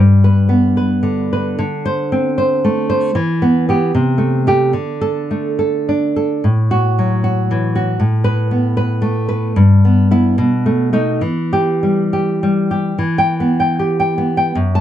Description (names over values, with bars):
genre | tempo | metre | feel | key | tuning
romantic piece for solo classical guitar | 66-80 BPM | 2/4 | rubato | E minor from 6.5 s | A4 = 440 Hz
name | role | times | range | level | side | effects
nylon-string guitar | solo | 0.0-14.8 s | F#2 to A5 | -13 LUFS | equal | none
room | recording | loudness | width
moderate studio ambience, RT60 0.5 s | dark, warm production | -13 LUFS | side -11 dB against mid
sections
0.0-13.0 A section; 13.0-14.8 B section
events
none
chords
0.0 G; 1.6 D5; 3.1 Em; 3.9 Am7/C; 4.7 D5; 6.5 F#m7/A; 8.0 Asus2; 9.6 Em/G; 10.4 B7; 11.2 Em